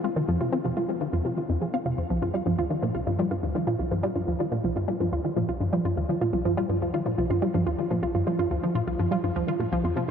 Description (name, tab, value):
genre	ambient, sequencer-driven space music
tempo	124 BPM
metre	4/4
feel	straight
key	unclear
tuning	A4 = 440 Hz
part	wide unison pluck	arpeggios	0.0-10.1 s	F3 to F5	-27 LUFS	right 1 dB	auto-pan, ping-pong delay
part	resonant blip pluck	riff	0.0-10.1 s	C2 to C4	-27 LUFS	left 1 dB	chorus, ping-pong delay
room	wet huge ambient reverb, RT60 8.4 s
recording	none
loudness	-24 LUFS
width	side -7 dB against mid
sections	0.0-10.1 A section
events	filter sweep on synth arpeggio sound 0.0-10.1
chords	0.0 Fm7; 2.1 Csus4